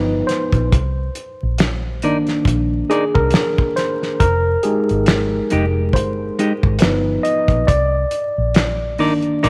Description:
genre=R&B, neo-soul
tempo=69 BPM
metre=4/4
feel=swing 56% on 16ths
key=unclear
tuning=A4 = 439 Hz
part: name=tine electric piano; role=accompaniment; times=0.0-9.5 s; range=Eb3 to D#5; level=-21 LUFS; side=equal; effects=none
part: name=vintage muted fingered electric bass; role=bass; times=0.0-9.5 s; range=F1 to C2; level=-23 LUFS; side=equal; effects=none
part: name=cloth-damped thuddy drum kit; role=drums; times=0.3-9.5 s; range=hi-hat, kick drum, snare drum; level=-21 LUFS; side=equal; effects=none
part: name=semi-hollow electric guitar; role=second line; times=2.0-9.5 s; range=Ab3 to D5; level=-23 LUFS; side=equal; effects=none
room=light reverb, studio reverb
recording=vinyl crackle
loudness=-18 LUFS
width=mono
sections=0.0-9.5 A section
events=tine electric piano solo 0.0-9.5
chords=0.0 G7alt; 0.7 Cm9; 4.2 Fm9; 6.8 G7alt; 7.7 Cm9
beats=| 0.72 1.59 2.46 3.33 | 4.20 5.07 5.94 6.81 | 7.68 8.55 9.42

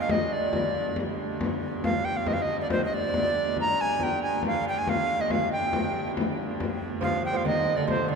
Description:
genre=medieval dance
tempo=92 BPM (dotted quarters)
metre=6/8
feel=straight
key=unclear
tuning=A4 = 439 Hz
part: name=bright reedy tenor recorder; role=melody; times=0.0-8.2 s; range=C5 to Bb5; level=-27 LUFS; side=right 1 dB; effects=none
part: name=warm hurdy-gurdy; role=drone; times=0.0-8.2 s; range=G2 to D3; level=-35 LUFS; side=right 2 dB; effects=none
part: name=frame drum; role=percussion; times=0.1-8.1 s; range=none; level=-29 LUFS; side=left 2 dB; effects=none
part: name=lute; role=second line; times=7.0-8.2 s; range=C3 to F3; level=-29 LUFS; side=right 5 dB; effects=none
room=wet cathedral reverb, RT60 5.1 s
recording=minimal, uncompressed stereo recording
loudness=-24 LUFS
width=side -5 dB against mid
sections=0.0-6.2 A section; 6.2-8.2 A section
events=none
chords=none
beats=0.32 | 0.97 1.62 | 2.27 2.92 | 3.56 4.21 | 4.86 5.51 | 6.16 6.81 | 7.45 8.10

